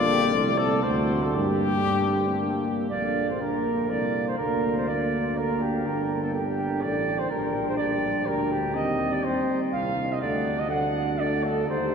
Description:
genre	classical, brass quintet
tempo	123 BPM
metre	3/4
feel	rubato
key	Bb major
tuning	A4 = 440 Hz
part	dark trumpet	melody	0.0-11.9 s	G4 to Bb5	-30 LUFS	left 4 dB	none
part	warm flugelhorn	second line	0.0-11.9 s	F4 to F#5	-28 LUFS	right 3 dB	none
part	mellow French horn	accompaniment	0.0-11.9 s	A3 to G4	-30 LUFS	left 1 dB	none
part	warm euphonium	accompaniment	0.0-11.9 s	D3 to A3	-33 LUFS	right 2 dB	none
part	mellow tuba	bass	0.0-11.9 s	G1 to G2	-30 LUFS	right 1 dB	none
room	wet cathedral reverb, RT60 6.0 s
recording	heard from further back in the room, faint mains hum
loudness	-23 LUFS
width	side -6 dB against mid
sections	0.0-2.9 A section; 2.9-11.9 B section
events	none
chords	0.3 Amadd11/C; 0.8 D7; 1.4 Gm; 2.9 Bb; 4.4 Bb/D; 5.9 G5; 7.3 Gm/Bb; 8.8 Cm/Eb; 10.2 D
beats	0.34 0.84 | 1.35 1.88 2.39 | 2.90 3.41 3.90 | 4.39 4.88 5.37 | 5.86 6.35 6.83 | 7.31 7.79 8.27 | 8.75 9.24 9.73 | 10.21 10.70 11.19 | 11.68

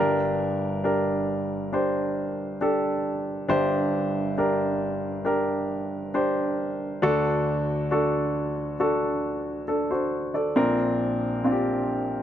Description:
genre	pop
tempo	68 BPM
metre	4/4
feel	straight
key	G minor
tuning	A4 = 440 Hz
part	clear baby grand piano	solo	0.0-12.2 s	G1 to D5	-23 LUFS	equal	none
room	light reverb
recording	dry, close 1970s-style studio recording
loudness	-23 LUFS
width	side -10 dB against mid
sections	0.0-12.2 A section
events	none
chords	0.0 Gm; 7.0 D; 10.6 Bbadd9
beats	0.86 1.74 2.62 | 3.50 4.39 5.27 6.15 | 7.03 7.92 8.80 9.68 | 10.56 11.45

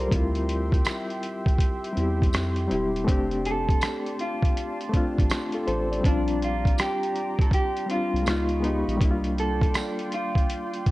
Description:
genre	lo-fi hip hop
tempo	81 BPM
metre	4/4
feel	swing 65% on 16ths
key	F major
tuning	A4 = 436 Hz
part	bright reed electric piano	accompaniment	0.0-10.9 s	G3 to D5	-28 LUFS	left 2 dB	fast tremolo, low-pass filter
part	warm analog pad	sustained chords	0.0-10.9 s	F4 to C6	-36 LUFS	right 1 dB	chorus, low-pass filter
part	soft dub sub bass	bass	0.0-9.7 s	E1 to F2	-29 LUFS	equal	none
part	lo-fi sampler-style drum kit	drums	0.0-10.9 s	hi-hat, kick drum, rim click	-24 LUFS	equal	none
part	tambourine	percussion	0.8-10.0 s	none	-41 LUFS	right 4 dB	none
part	electric guitar through a small old amp	melody	3.5-10.7 s	D4 to A4	-30 LUFS	equal	low-pass filter, tape echo
room	little or no reverb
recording	cassette tape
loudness	-22 LUFS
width	side -18 dB against mid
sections	0.0-10.9 A section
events	break 0.0-3.1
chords	0.1 Dm11; 3.1 F6; 6.0 Bb69; 8.3 Db9; 9.0 C9sus4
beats	| 0.12 0.86 1.60 2.34 | 3.08 3.82 4.56 5.30 | 6.04 6.78 7.52 8.26 | 9.00 9.74 10.49

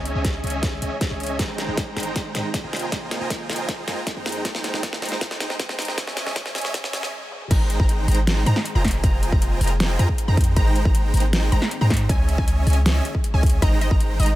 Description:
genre	future bass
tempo	157 BPM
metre	4/4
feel	half-time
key	unclear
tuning	A4 = 440 Hz
part	ethereal airy pad	sustained chords	0.0-14.4 s	Eb3 to Ab4	-37 LUFS	left 2 dB	ensemble chorus, built-in reverb, vintage 12-bit sampler grit, sidechain pumping
part	supersaw chords	riff	0.0-14.4 s	Ab3 to Bb5	-28 LUFS	right 2 dB	sidechain pumping, low-pass filter, dub echo
part	warm 808-style bass	bass	0.0-14.4 s	F1 to Ab2	-21 LUFS	equal	sidechain pumping
part	dubstep drum kit	drums	0.1-14.3 s	crash cymbal, hi-hat, snare drum, toms	-26 LUFS	equal	overdrive, high-pass filter on snare, high-pass filter on hats, high-pass filter on toms, high-pass filter on cymbals, high-pass filter on room
part	electronic kick drum	drums	0.2-14.0 s	none	-21 LUFS	equal	overdrive
part	wide unison pluck	arpeggios	7.5-14.4 s	Ab5 to Bb5	-33 LUFS	equal	vintage 12-bit sampler grit, sidechain pumping
part	wide unison pluck	melody	13.6-14.4 s	Eb5	-29 LUFS	equal	sidechain pumping, tape echo
room	little or no reverb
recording	high-pass filter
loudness	-19 LUFS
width	side -16 dB against mid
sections	0.0-7.5 A section; 7.5-14.4 B section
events	build-up 0.0-7.5; drum fill 0.0-7.1, 7.3; filter sweep on ambient pad 0.0-7.5; filter sweep 0.0-7.5; break 7.1-7.5; drop 7.5-14.4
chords	0.0 Dbmadd9; 1.4 Fm11; 4.3 Abmaj9; 6.0 Dbmadd9; 7.5 Fm11; 10.4 Abmaj9; 12.1 Dbmadd9; 13.6 Fm11 (rootless)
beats	0.25 0.63 1.01 | 1.39 1.77 2.16 2.54 | 2.92 3.30 3.69 4.07 | 4.45 4.83 5.21 5.60 | 5.98 6.36 6.74 7.13 | 7.51 7.89 8.27 8.65 | 9.04 9.42 9.80 10.18 | 10.56 10.95 11.33 11.71 | 12.09 12.48 12.86 13.24 | 13.62 14.01

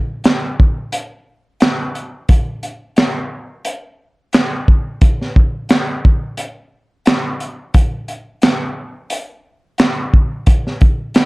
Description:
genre	hip hop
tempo	88 BPM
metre	4/4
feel	swing 54% on 16ths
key	none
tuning	none
part	crunchy breakbeat drum kit	drums	0.2-11.3 s	handclaps, hi-hat, kick drum, snare drum	-13 LUFS	equal	none
room	little or no reverb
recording	dark, warm production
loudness	-14 LUFS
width	side -24 dB against mid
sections	0.0-11.3 A section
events	none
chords	none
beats	0.24 0.93 1.61 | 2.29 2.97 3.65 4.33 | 5.02 5.70 6.38 7.06 | 7.74 8.43 9.11 9.79 | 10.47 11.15

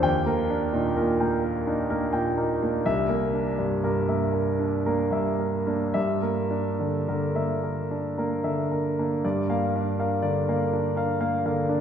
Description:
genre	classical, impressionist solo piano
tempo	53-66 BPM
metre	3/4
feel	rubato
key	G minor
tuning	A4 = 438 Hz
part	clear concert grand piano	solo	0.0-11.8 s	C2 to G5	-23 LUFS	equal	none
room	wet scoring stage reverb, RT60 2.1 s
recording	heard from further back in the room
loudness	-23 LUFS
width	side -8 dB against mid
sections	0.0-9.2 A section; 9.2-11.8 A section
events	none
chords	0.0 Ebmaj7; 2.8 C9; 6.0 Gm6; 9.2 Gm7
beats	| 0.04 0.98 1.91 | 2.85 3.83 4.87 | 5.95 7.07 8.16 | 9.23 10.24 11.22

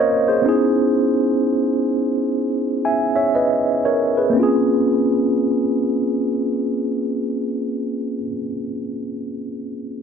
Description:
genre	R&B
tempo	58-65 BPM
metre	4/4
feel	swing 62% on 16ths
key	unclear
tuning	A4 = 440 Hz
part	mellow tine electric piano	solo	0.0-10.0 s	Bb3 to Ab5	-17 LUFS	equal	fast stereo tremolo
room	moderate studio reverb, RT60 0.8 s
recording	none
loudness	-17 LUFS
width	side -7 dB against mid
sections	0.0-4.4 A section; 4.4-8.5 B section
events	slowing down 0.0-4.4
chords	0.4 Dbm9; 4.4 Bbm9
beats	| 0.44 1.38 2.35 3.33 | 4.36 5.39 6.43 7.47

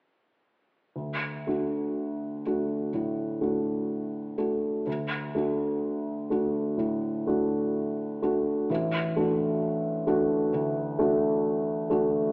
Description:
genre	classical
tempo	58-66 BPM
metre	4/4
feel	rubato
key	D major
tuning	A4 = 440 Hz
part	dark concert grand piano	accompaniment	1.0-12.3 s	A1 to F#4	-25 LUFS	equal	none
room	wet recital hall reverb, RT60 1.5 s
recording	telephone sound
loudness	-25 LUFS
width	side -27 dB against mid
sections	1.0-12.3 A section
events	none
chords	1.0 D; 8.7 D/A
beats	| 0.95 1.97 2.93 3.89 | 4.87 5.82 6.78 7.75 | 8.69 9.61 10.53 11.44

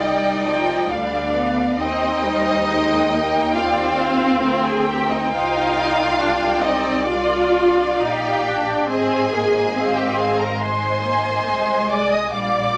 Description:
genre	classical, slow romantic movement for string orchestra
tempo	69 BPM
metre	4/4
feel	rubato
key	C minor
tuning	A4 = 443 Hz
part	warm symphonic violin section	melody	0.0-12.8 s	D5 to Eb6	-28 LUFS	equal	none
part	warm symphonic violin section	second line	0.0-12.8 s	Bb4 to Ab5	-25 LUFS	equal	none
part	warm symphonic viola section	accompaniment	0.0-12.7 s	F3 to F4	-25 LUFS	equal	none
part	rich symphonic cello section	bass	0.0-12.8 s	D4 to Eb5	-26 LUFS	equal	none
part	rich symphonic double bass section	bass	0.0-12.8 s	Ab1 to Eb2	-30 LUFS	equal	none
room	wet studio reverb, RT60 0.8 s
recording	none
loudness	-19 LUFS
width	mono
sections	0.0-12.8 A section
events	none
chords	0.0 G7/C; 1.8 Cm/Eb; 5.3 Cm; 8.9 Ab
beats	0.00 0.89 | 1.78 2.67 3.54 4.42 | 5.32 6.19 7.05 8.00 | 8.89 9.75 10.60 11.47 | 12.32

